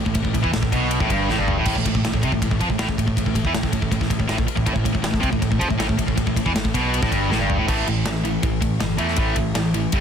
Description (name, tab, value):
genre	heavy metal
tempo	160 BPM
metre	4/4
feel	straight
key	unclear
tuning	A4 = 440 Hz
part	sludgy distorted guitar	riff	0.0-10.0 s	G2 to A3	-21 LUFS	equal	overdrive
part	modern bright picked electric bass	bass	0.0-10.0 s	G1 to F2	-26 LUFS	equal	none
part	modern studio drum kit	drums	0.1-10.0 s	crash cymbal, kick drum, ride cymbal, snare drum, toms	-24 LUFS	equal	none
room	studio ambience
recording	dense, heavily limited modern master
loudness	-18 LUFS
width	side -8 dB against mid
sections	0.0-7.7 A section; 7.7-10.0 B section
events	drum fill 1.3-1.7, 7.3-7.7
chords	0.0 N.C.; 7.7 A5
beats	| 0.16 0.54 0.91 1.29 | 1.66 2.04 2.42 2.79 | 3.17 3.54 3.92 4.30 | 4.67 5.05 5.42 5.80 | 6.18 6.55 6.93 7.30 | 7.68 8.05 8.43 8.81 | 9.18 9.56 9.93